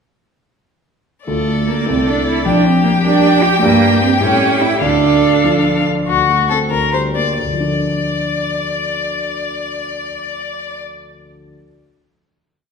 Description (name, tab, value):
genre	quick classical-period movement for piano quartet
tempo	85-104 BPM (dotted quarters)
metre	6/8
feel	rubato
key	D minor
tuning	A4 = 440 Hz
part	clear violin	melody	1.3-10.8 s	F#4 to G5	-19 LUFS	left 6 dB	none
part	rich violin	second line	1.3-5.9 s	G4 to A4	-22 LUFS	left 1 dB	none
part	warm cello	second line	1.3-5.8 s	A3 to G4	-14 LUFS	right 5 dB	none
part	warm concert grand piano	accompaniment	1.3-11.7 s	Bb1 to D5	-18 LUFS	left 2 dB	none
room	wet recital hall reverb, RT60 1.4 s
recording	recorded in a church or concert hall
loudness	-13 LUFS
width	side -6 dB against mid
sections	1.3-6.1 A section; 6.1-7.4 coda; 7.4-10.1 final chord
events	slowing down 4.2-7.4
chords	1.3 Dm; 1.9 Am/C; 2.5 Gm/Bb; 3.6 Gm; 4.2 A7; 4.8 Dm; 6.1 D7; 6.7 Gm/D; 7.4 Dm